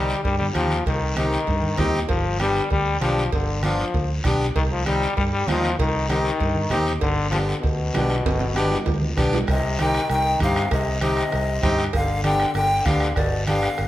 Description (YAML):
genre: latin, cumbia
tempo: 195 BPM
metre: 4/4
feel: straight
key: C harmonic minor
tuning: A4 = 444 Hz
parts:
  - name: growling trombone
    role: second line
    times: 0.0-13.9 s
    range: B2 to G3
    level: -26 LUFS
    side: left 3 dB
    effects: none
  - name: accordion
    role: accompaniment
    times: 0.0-13.7 s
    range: B3 to G4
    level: -27 LUFS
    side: left 1 dB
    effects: none
  - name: fingered electric bass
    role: bass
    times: 0.0-13.9 s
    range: G1 to G2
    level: -25 LUFS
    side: equal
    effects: none
  - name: guiro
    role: percussion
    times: 0.1-13.9 s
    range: none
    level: -35 LUFS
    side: left 3 dB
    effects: none
  - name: bombo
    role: percussion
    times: 0.2-13.9 s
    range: none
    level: -28 LUFS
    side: right 1 dB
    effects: none
  - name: cowbell and timbales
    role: percussion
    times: 0.2-13.9 s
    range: none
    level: -33 LUFS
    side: right 5 dB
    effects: none
  - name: congas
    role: percussion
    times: 0.4-13.9 s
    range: none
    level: -31 LUFS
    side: right 1 dB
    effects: none
  - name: breathy jazz flute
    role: melody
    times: 9.5-13.9 s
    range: D5 to G5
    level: -24 LUFS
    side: left 1 dB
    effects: none
room: wet large studio reverb, RT60 1.3 s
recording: none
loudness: -19 LUFS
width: side -14 dB against mid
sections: 0.0-9.5 A section; 9.5-13.9 B section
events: trombone solo 0.0-9.5; drum fill 8.3-9.5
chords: 0.0 Cm; 2.1 G7; 4.6 Cm; 7.0 G; 9.5 Cm; 11.9 G7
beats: 0.25 0.55 | 0.86 1.17 1.48 1.79 | 2.09 2.40 2.71 3.02 | 3.33 3.63 3.94 4.25 | 4.56 4.87 5.17 5.48 | 5.79 6.10 6.41 6.71 | 7.02 7.33 7.64 7.95 | 8.25 8.56 8.87 9.18 | 9.48 9.79 10.10 10.40 | 10.71 11.02 11.33 11.63 | 11.94 12.25 12.55 12.86 | 13.17 13.48 13.78